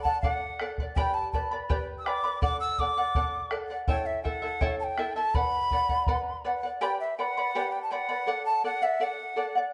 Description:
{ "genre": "andean folk, Andean ensemble", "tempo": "82 BPM", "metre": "2/4", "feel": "straight", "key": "unclear", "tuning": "A4 = 438 Hz", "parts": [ { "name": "bright large quena", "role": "melody", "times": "0.0-9.6 s", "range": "E5 to E6", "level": "-32 LUFS", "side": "equal", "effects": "none" }, { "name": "charango", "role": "accompaniment", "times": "0.0-9.7 s", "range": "E4 to B5", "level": "-33 LUFS", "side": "equal", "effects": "none" }, { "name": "bombo", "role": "percussion", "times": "0.0-6.2 s", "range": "none", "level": "-34 LUFS", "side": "equal", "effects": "none" } ], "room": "wet stone room reverb, RT60 1.2 s", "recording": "band playing live in one room, nothing above 10.6 kHz", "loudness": "-29 LUFS", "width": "mono", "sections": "0.0-6.8 A section; 6.8-9.7 A section", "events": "none", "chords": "0.0 D; 1.0 G; 2.4 D; 3.9 A7; 5.3 Bm; 6.8 G; 8.3 D" }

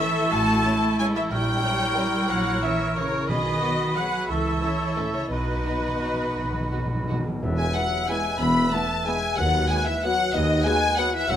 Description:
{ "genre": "classical, orchestral ballroom waltz", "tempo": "160-204 BPM", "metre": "3/4", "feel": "rubato", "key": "unclear", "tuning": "A4 = 438 Hz", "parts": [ { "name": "warm studio violin section", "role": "melody", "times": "0.0-11.4 s", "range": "E4 to B5", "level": "-30 LUFS", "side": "left 3 dB", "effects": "none" }, { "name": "dark clarinet", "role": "second line", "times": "0.0-11.4 s", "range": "D#4 to B4", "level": "-33 LUFS", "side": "right 1 dB", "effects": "none" }, { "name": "mellow hollow silver concert flute", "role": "second line", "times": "0.0-11.4 s", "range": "D#5 to C#6", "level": "-32 LUFS", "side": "equal", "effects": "none" }, { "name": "rich studio violin section", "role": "second line", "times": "0.0-11.4 s", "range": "D#4 to B5", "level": "-32 LUFS", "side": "left 1 dB", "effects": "none" }, { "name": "warm oboe", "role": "second line", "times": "0.0-11.4 s", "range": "F#4 to F#5", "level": "-32 LUFS", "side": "equal", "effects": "none" }, { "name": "warm studio viola section", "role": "accompaniment", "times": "0.0-11.1 s", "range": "B3 to A5", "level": "-28 LUFS", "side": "equal", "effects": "none" }, { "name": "dark French horn section", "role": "sustained chords", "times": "0.0-11.4 s", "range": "D#3 to D#4", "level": "-31 LUFS", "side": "left 3 dB", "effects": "none" }, { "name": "warm studio cello section", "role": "bass", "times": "0.0-11.4 s", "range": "D#2 to A3", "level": "-29 LUFS", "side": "right 1 dB", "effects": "none" }, { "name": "warm studio double bass section", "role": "bass", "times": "0.3-11.4 s", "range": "E1 to D#2", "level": "-30 LUFS", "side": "right 1 dB", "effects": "none" }, { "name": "timpani", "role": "percussion", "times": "3.3-7.9 s", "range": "E2 to B2", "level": "-31 LUFS", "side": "equal", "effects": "none" }, { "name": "warm tuba", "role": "bass", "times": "7.4-11.4 s", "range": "E1 to D#2", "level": "-30 LUFS", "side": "right 2 dB", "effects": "none" }, { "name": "clear trombone section", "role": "sustained chords", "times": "7.8-11.1 s", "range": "E3 to B3", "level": "-36 LUFS", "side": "right 5 dB", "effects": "none" } ], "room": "moderate recital hall reverb, RT60 1.4 s", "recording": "close, detailed microphones", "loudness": "-21 LUFS", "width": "side -10 dB against mid", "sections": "0.0-7.4 A section; 7.4-11.4 B section", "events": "timpani fill 5.3-7.4", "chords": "0.0 A; 1.3 A#dim7; 3.3 B; 4.3 A/C#; 5.3 B; 7.4 E; 9.4 B/D#" }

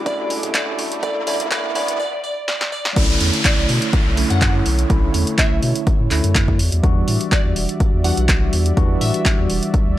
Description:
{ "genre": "deep house", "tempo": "124 BPM", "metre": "4/4", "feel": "swing 54% on 16ths", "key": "B minor", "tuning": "A4 = 440 Hz", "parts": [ { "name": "warm analog pad", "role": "sustained chords", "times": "0.0-10.0 s", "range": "G3 to D6", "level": "-29 LUFS", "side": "right 2 dB", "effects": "chorus, sidechain pumping" }, { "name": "tine electric piano", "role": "stabs", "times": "0.0-10.0 s", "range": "D3 to F#4", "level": "-24 LUFS", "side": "right 1 dB", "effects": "medium stereo tremolo, sidechain pumping, tape echo" }, { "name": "riser and downlifter", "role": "sound effects", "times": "0.0-6.8 s", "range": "none", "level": "-26 LUFS", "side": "equal", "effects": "none" }, { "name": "glassy wavetable pluck", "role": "melody", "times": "0.1-9.2 s", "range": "D5 to F#5", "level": "-27 LUFS", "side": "equal", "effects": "chorus, tape echo" }, { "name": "electronic kick drum", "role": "drums", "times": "0.1-9.8 s", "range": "none", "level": "-18 LUFS", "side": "equal", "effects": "none" }, { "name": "punchy analog drum machine", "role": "drums", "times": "0.1-9.8 s", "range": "crash cymbal, handclaps, hi-hat, snare drum", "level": "-23 LUFS", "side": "equal", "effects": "none" }, { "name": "congas", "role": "percussion", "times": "0.4-1.5 s", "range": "none", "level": "-39 LUFS", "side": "right 2 dB", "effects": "none" }, { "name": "warm sub bass", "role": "bass", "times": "3.0-10.0 s", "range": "E1 to B2", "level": "-19 LUFS", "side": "equal", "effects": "sidechain pumping" } ], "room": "little or no reverb", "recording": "dry, gritty hardware recording, high-pass filter", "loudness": "-16 LUFS", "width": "side -14 dB against mid", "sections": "0.0-3.0 A section; 3.0-10.0 B section", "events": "build-up 0.0-3.0; riser 0.0-2.0; drum fill 2.5-3.0; drop 3.0-10.0", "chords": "0.0 Em9; 3.0 Bm11; 6.6 Em9" }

